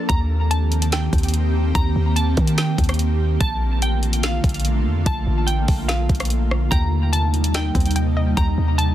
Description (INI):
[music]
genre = hip hop, atmospheric cloud-rap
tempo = 145 BPM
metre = 4/4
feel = half-time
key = unclear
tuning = A4 = 438 Hz
[part]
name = ethereal airy pad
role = sustained chords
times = 0.0-8.9 s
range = C3 to G4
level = -25 LUFS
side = equal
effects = ensemble chorus, built-in reverb, sidechain pumping
[part]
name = hollow square pluck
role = arpeggios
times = 0.0-0.1, 6.7-8.9 s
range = C4 to G5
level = -34 LUFS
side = left 3 dB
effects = chorus, tape echo
[part]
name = glassy wavetable pluck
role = melody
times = 0.1-8.9 s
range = F5 to Bb5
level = -28 LUFS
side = equal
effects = chorus, tape echo
[part]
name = warm 808-style bass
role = bass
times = 0.1-8.9 s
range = A1 to Eb3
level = -20 LUFS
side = equal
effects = none
[part]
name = smooth R&B drum kit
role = drums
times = 0.1-8.9 s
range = hi-hat, kick drum, rim click, snare drum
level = -22 LUFS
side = equal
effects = none
[sound]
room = digital ambience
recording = dense, heavily limited modern master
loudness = -17 LUFS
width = side -12 dB against mid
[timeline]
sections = 0.1-8.9 A section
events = none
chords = 0.1 Eb6; 3.4 Bbmaj7; 6.7 Eb6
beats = | 0.10 0.51 0.92 1.34 | 1.75 2.17 2.58 2.99 | 3.41 3.82 4.23 4.65 | 5.06 5.48 5.89 6.30 | 6.72 7.13 7.54 7.96 | 8.37 8.79